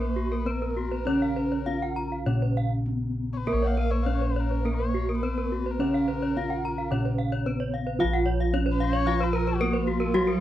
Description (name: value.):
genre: Balinese gamelan.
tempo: 100-112 BPM.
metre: 4/4.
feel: straight.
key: Bb pelog.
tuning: A4 = 441 Hz.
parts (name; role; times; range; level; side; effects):
gamelan-type bronze metallophone; melody; 0.0-10.4 s; Gb3 to F4; -31 LUFS; right 1 dB; none.
dark erhu; second line; 0.0-10.4 s; F4 to Gb5; -35 LUFS; left 7 dB; tape echo.
gamelan-type bronze metallophone; accompaniment; 0.0-10.4 s; Db3 to Bb3; -34 LUFS; right 5 dB; none.
gamelan-type bronze metallophone; arpeggios; 0.0-10.1 s; Gb4 to Gb5; -34 LUFS; right 6 dB; none.
gamelan-type bossed gongs; bass; 0.0-10.4 s; Bb1 to Bb4; -27 LUFS; equal; none.
gamelan-type bronze metallophone; arpeggios; 0.3-10.4 s; Gb4 to Bb5; -32 LUFS; left 4 dB; none.
room: little or no reverb.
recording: dry, close 1970s-style studio recording.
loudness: -24 LUFS.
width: side -12 dB against mid.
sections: 0.0-8.0 A section; 8.0-10.4 B section.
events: none.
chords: none.